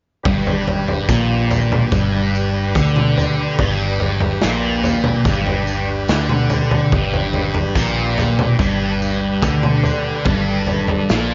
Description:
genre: psychedelic rock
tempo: 72 BPM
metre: 4/4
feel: straight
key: unclear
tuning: A4 = 440 Hz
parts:
  - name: tonewheel organ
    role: sustained chords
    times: 0.2-11.3 s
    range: D4 to B4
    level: -29 LUFS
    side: equal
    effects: fast rotary speaker
  - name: thick fuzz guitar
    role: riff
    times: 0.3-11.3 s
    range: G2 to D3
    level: -21 LUFS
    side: equal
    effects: distortion, phaser
  - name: fingered electric bass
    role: bass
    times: 0.3-11.3 s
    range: G1 to D2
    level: -26 LUFS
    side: equal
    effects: none
  - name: raw garage drum kit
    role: drums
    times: 0.3-11.3 s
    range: kick drum, snare drum, toms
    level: -22 LUFS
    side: equal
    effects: none
  - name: tambourine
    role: percussion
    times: 1.1-11.3 s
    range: none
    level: -40 LUFS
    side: equal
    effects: none
room: studio reverb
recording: nothing above 7.5 kHz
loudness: -18 LUFS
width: mono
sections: 0.3-11.3 A section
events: none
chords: 0.3 G

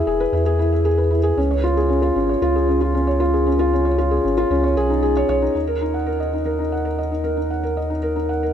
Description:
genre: piano and strings electronica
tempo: 115 BPM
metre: 4/4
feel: straight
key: Eb minor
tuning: A4 = 439 Hz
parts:
  - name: felt-muted upright piano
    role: riff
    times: 0.0-8.5 s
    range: Db4 to Gb5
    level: -19 LUFS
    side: equal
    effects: digital delay
  - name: warm sub bass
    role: bass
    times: 0.0-8.5 s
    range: E1 to E2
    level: -22 LUFS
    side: equal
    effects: none
room: moderate huge ambient reverb, RT60 7.7 s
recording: none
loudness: -17 LUFS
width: side -9 dB against mid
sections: 0.0-5.6 A section; 5.6-8.5 B section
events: none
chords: 0.0 E; 1.4 Dbadd9; 5.6 Ebm

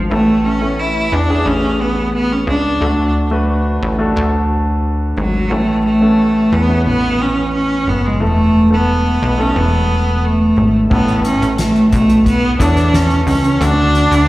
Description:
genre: piano-driven pop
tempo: 89 BPM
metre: 4/4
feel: straight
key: A major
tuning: A4 = 439 Hz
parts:
  - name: warm concert grand piano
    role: accompaniment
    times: 0.0-14.3 s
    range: A2 to C#5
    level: -20 LUFS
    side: left 1 dB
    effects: plate reverb, slapback echo
  - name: plucky analog bass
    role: bass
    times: 0.0-14.3 s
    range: E1 to E2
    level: -16 LUFS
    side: equal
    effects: none
  - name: clear cello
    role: melody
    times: 0.1-14.3 s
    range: F#3 to E4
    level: -14 LUFS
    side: right 1 dB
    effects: plate reverb, slapback echo
  - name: soft-mallet drum kit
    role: drums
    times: 10.9-14.3 s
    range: crash cymbal, hi-hat, kick drum, snare drum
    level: -20 LUFS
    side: equal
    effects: none
room: moderate club reverb, RT60 0.5 s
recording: live gig heard through the venue's PA, recital hall reverb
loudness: -12 LUFS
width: side -17 dB against mid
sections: 0.0-10.9 A section; 10.9-14.3 B section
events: none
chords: 0.1 Aadd9; 2.8 D; 5.5 Aadd9; 8.2 Esus4; 10.9 Aadd9; 13.6 D

